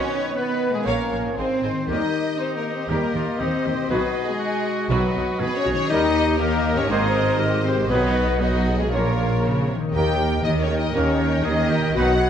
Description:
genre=cinematic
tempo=119 BPM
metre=4/4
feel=straight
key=Eb mixolydian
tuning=A4 = 443 Hz
part: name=warm symphonic violin section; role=melody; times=0.0-12.3 s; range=F#4 to G5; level=-30 LUFS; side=left 3 dB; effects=none
part: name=clear clarinet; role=second line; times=0.0-12.3 s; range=F#4 to Db5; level=-32 LUFS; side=equal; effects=none
part: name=clear oboe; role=second line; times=0.0-12.3 s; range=D#4 to Db5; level=-31 LUFS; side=right 1 dB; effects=none
part: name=mellow hollow large flute ensemble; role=second line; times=0.0-12.3 s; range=C5 to F5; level=-33 LUFS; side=equal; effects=none
part: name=warm symphonic violin section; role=second line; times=0.0-12.3 s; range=F#4 to Ab5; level=-32 LUFS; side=left 2 dB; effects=none
part: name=rich symphonic viola section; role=accompaniment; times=0.0-12.3 s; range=F#4 to G5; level=-30 LUFS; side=right 1 dB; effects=none
part: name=warm French horn section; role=sustained chords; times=0.0-12.3 s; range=F#3 to G4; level=-26 LUFS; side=left 4 dB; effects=none
part: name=warm trombone section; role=sustained chords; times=0.0-12.1 s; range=Eb3 to Db4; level=-32 LUFS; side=right 2 dB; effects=none
part: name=concert harp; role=arpeggios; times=0.0-12.3 s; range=Ab2 to D#5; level=-32 LUFS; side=left 6 dB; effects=none
part: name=mellow trumpet section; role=stabs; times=0.0-12.1 s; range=Ab4 to Db5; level=-32 LUFS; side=right 3 dB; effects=none
part: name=rich symphonic cello section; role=bass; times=0.0-12.3 s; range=Ab2 to Db4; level=-28 LUFS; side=right 2 dB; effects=none
part: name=warm symphonic double bass section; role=bass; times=0.9-12.3 s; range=Ab1 to Eb2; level=-26 LUFS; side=right 2 dB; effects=none
part: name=warm tuba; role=bass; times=1.9-12.3 s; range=Ab1 to Eb2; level=-29 LUFS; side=right 4 dB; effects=none
room=moderate scoring stage reverb, RT60 1.6 s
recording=dark, warm production, nothing above 10.3 kHz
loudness=-19 LUFS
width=side -8 dB against mid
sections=0.0-1.9 A section; 1.9-12.3 A section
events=none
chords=0.0 B; 0.9 Bbm; 1.4 Ab; 1.9 Eb; 3.9 B; 5.9 Eb; 6.9 Abadd9; 7.9 B; 8.9 Bbm; 9.9 Eb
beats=0.36 0.87 1.38 | 1.90 2.40 2.91 3.41 | 3.91 4.41 4.91 5.41 | 5.91 6.41 6.91 7.41 | 7.91 8.41 8.92 9.43 | 9.94 10.44 10.95 11.45 | 11.95

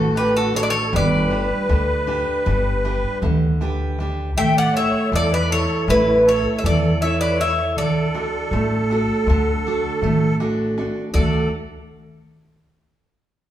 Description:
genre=greek folk, Greek bouzouki band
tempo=159 BPM (eighths)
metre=9/8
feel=straight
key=D major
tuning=A4 = 440 Hz
part: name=Greek bouzouki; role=melody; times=0.0-11.5 s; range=A4 to G5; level=-20 LUFS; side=left 1 dB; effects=none
part: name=musette accordion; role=second line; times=0.0-11.5 s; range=E4 to E5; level=-25 LUFS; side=equal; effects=none
part: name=picked steel-string acoustic guitar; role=accompaniment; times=0.0-11.5 s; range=D3 to E5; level=-24 LUFS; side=right 1 dB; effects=none
part: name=upright bass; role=bass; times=0.0-11.5 s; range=G1 to E2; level=-24 LUFS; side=equal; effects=none
part: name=darbuka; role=percussion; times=0.2-11.5 s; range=none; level=-25 LUFS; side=right 1 dB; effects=none
room=wet large studio reverb, RT60 1.5 s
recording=band playing live in one room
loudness=-17 LUFS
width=side -11 dB against mid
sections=0.0-11.2 A section; 11.2-13.5 B section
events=speeding up 0.0-13.5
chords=0.0 D; 0.9 G; 4.4 A; 7.8 D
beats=0.16 0.55 | 0.93 1.31 1.69 2.08 2.46 2.84 3.22 3.60 3.98 | 4.36 4.74 5.12 5.50 5.88 6.26 6.64 7.01 7.39 | 7.77 8.15 8.52 8.90 9.28 9.65 10.03 10.40 10.78 | 11.15

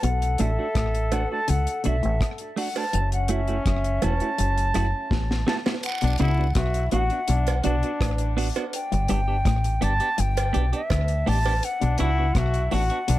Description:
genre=roots reggae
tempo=83 BPM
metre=4/4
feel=straight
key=B minor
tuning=A4 = 440 Hz
part: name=concert flute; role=melody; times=0.0-13.2 s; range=E5 to A5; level=-28 LUFS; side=left 1 dB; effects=tape echo, plate reverb
part: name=brilliant trombone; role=second line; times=0.0-13.2 s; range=C#4 to A4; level=-32 LUFS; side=left 2 dB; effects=tape echo, plate reverb
part: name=electric guitar with an envelope filter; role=riff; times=0.0-13.2 s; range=E2 to D3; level=-30 LUFS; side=left 5 dB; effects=none
part: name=deep dub fingered electric bass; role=bass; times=0.0-13.2 s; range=E1 to D2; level=-24 LUFS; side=equal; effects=none
part: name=deep reggae drum kit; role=drums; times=0.0-13.2 s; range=hi-hat, kick drum, rim click, snare drum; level=-28 LUFS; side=equal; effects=none
part: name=semi-hollow electric guitar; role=accompaniment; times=0.4-13.0 s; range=A3 to G4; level=-31 LUFS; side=right 6 dB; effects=tape echo, plate reverb
part: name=cowbell and jawbone-type rattle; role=percussion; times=1.1-11.6 s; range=none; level=-33 LUFS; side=right 7 dB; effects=none
room=light reverb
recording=none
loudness=-21 LUFS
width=side -15 dB against mid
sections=0.0-5.8 A section; 5.8-13.2 B section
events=drum fill 5.1-5.8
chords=0.0 Bm7; 2.9 F#m7; 5.8 Bm; 8.7 G; 11.6 Bm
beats=| 0.03 0.76 1.48 2.21 | 2.93 3.66 4.38 5.11 | 5.83 6.56 7.28 8.01 | 8.73 9.45 10.18 10.90 | 11.63 12.35 13.07

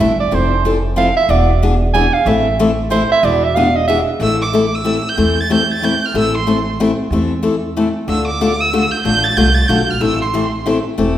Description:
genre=acoustic string swing (jazz manouche)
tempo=186 BPM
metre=3/4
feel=swing 61% on 8ths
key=A minor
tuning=A4 = 440 Hz
part: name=clear soprano saxophone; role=second line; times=0.0-4.0 s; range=C5 to G#5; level=-16 LUFS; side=right 4 dB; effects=none
part: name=picked steel-string acoustic guitar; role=accompaniment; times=0.0-11.2 s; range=D3 to A4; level=-16 LUFS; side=left 3 dB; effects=none
part: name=upright bass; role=bass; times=0.0-11.2 s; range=E1 to E2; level=-20 LUFS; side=right 1 dB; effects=none
part: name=warm violin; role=melody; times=4.2-10.6 s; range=C6 to A6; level=-18 LUFS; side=right 4 dB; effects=none
room=wet recital hall reverb, RT60 1.6 s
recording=recorded in a church or concert hall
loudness=-13 LUFS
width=side -11 dB against mid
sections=0.0-4.2 A section; 4.2-11.2 B section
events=soprano saxophone solo 0.0-4.2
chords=0.3 Fmaj7; 1.3 E7; 2.3 Am; 3.2 E7; 4.2 Am; 8.1 Dm; 10.0 Am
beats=0.01 | 0.33 0.65 0.97 | 1.30 1.62 1.94 | 2.27 2.59 2.91 | 3.23 3.56 3.88 | 4.20 4.53 4.85 | 5.17 5.50 5.82 | 6.14 6.47 6.79 | 7.11 7.44 7.76 | 8.08 8.41 8.73 | 9.05 9.38 9.70 | 10.02 10.34 10.67 | 10.99

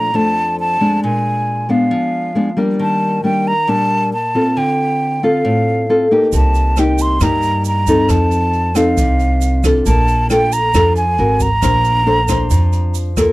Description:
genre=bossa nova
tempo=136 BPM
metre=4/4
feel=straight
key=Bb major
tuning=A4 = 440 Hz
part: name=breathy mellow silver concert flute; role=melody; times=0.0-13.0 s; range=F5 to C6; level=-17 LUFS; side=right 1 dB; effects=none
part: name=nylon-string guitar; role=accompaniment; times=0.0-13.3 s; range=F2 to C5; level=-16 LUFS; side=left 1 dB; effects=none
part: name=upright bass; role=bass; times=6.3-13.3 s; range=Ab1 to G2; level=-16 LUFS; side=right 1 dB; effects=none
part: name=jazz brush drum kit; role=drums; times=6.3-13.3 s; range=hi-hat, kick drum, rim click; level=-22 LUFS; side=equal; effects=none
part: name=tube shaker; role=percussion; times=6.3-13.3 s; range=none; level=-31 LUFS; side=right 18 dB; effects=none
room=light reverb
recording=none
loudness=-12 LUFS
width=side -19 dB against mid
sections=0.0-13.3 A section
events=none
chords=0.0 Bbmaj7; 1.0 Bb7b9; 2.8 Ebmaj7; 4.6 Dm7; 6.3 Cm7; 8.1 F7; 9.9 Bbmaj7; 11.2 Ab9; 11.6 Bbmaj9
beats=0.15 0.59 | 1.03 1.47 1.91 2.35 | 2.80 3.24 3.68 4.12 | 4.56 5.00 5.45 5.89 | 6.33 6.77 7.21 7.65 | 8.09 8.53 8.97 9.42 | 9.86 10.30 10.74 11.18 | 11.62 12.07 12.51 12.95

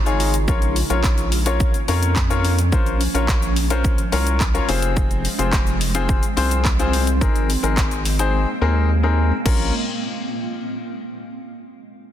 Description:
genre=dance-pop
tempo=107 BPM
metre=4/4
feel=straight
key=Bb minor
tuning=A4 = 440 Hz
part: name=granular cloud pad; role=sustained chords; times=0.0-9.7 s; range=Db3 to F4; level=-27 LUFS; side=right 2 dB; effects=built-in reverb, sidechain pumping
part: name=round analog bass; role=bass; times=0.0-9.7 s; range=F1 to F2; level=-20 LUFS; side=equal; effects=sidechain pumping
part: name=clear baby grand piano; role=accompaniment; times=0.1-9.7 s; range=C4 to Db5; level=-23 LUFS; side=left 6 dB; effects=sidechain pumping
part: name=pop drum kit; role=drums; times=0.1-9.6 s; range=crash cymbal, handclaps, hi-hat, kick drum, shaker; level=-21 LUFS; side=equal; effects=none
room=light reverb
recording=dense, heavily limited modern master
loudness=-17 LUFS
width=side -11 dB against mid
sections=0.0-9.5 A section; 9.5-11.7 B section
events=silent gap 8.3-9.5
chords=0.5 Bbm; 4.7 Fm; 7.2 Abadd9; 9.5 Bbm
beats=| 0.48 1.04 1.60 2.16 | 2.73 3.29 3.85 4.41 | 4.97 5.53 6.09 6.65 | 7.21 7.77 8.33 8.89 | 9.45

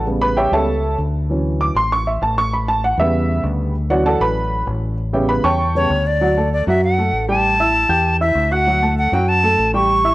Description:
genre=latin, salsa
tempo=195 BPM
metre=4/4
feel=straight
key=D major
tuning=A4 = 440 Hz
part: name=dark upright piano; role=accompaniment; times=0.0-10.1 s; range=C#3 to G6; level=-18 LUFS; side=right 1 dB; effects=none
part: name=deep dub fingered electric bass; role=bass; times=0.0-10.1 s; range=A1 to F#2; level=-20 LUFS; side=left 1 dB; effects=none
part: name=bright silver concert flute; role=melody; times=5.8-10.1 s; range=C#5 to C#6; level=-16 LUFS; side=equal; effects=none
room=light reverb, small room ambience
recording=home recording on cassette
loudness=-15 LUFS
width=side -18 dB against mid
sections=0.0-6.2 A section; 6.2-10.1 B section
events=upright piano solo 0.0-6.2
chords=0.1 A7; 1.3 Dmaj7; 2.5 A7; 3.7 Dmaj7; 5.0 A7; 6.2 D; 7.4 A5; 8.7 D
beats=| 0.06 0.37 0.68 0.98 | 1.29 1.60 1.90 2.21 | 2.52 2.83 3.13 3.44 | 3.75 4.05 4.36 4.67 | 4.97 5.28 5.59 5.90 | 6.20 6.51 6.82 7.12 | 7.43 7.74 8.04 8.35 | 8.66 8.96 9.27 9.58 | 9.89

